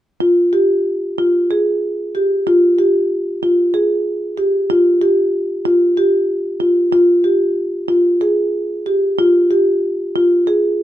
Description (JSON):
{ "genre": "contemporary instrumental, contemporary", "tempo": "187 BPM (eighths)", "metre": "7/8", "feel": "straight", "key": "unclear", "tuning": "A4 = 440 Hz", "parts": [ { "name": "marimba with medium mallets", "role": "solo", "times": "0.2-10.8 s", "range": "F4 to Ab4", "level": "-13 LUFS", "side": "equal", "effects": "none" } ], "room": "light reverb", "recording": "close, detailed microphones", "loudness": "-13 LUFS", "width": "side -13 dB against mid", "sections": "0.2-10.8 A section", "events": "none", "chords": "none", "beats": "| 0.20 0.53 0.85 1.18 1.50 1.82 2.14 | 2.46 2.79 3.10 3.42 3.74 4.06 4.38 | 4.70 5.02 5.34 5.66 5.98 6.29 6.61 | 6.93 7.25 7.58 7.90 8.22 8.55 8.87 | 9.20 9.52 9.84 10.16 10.48 10.80" }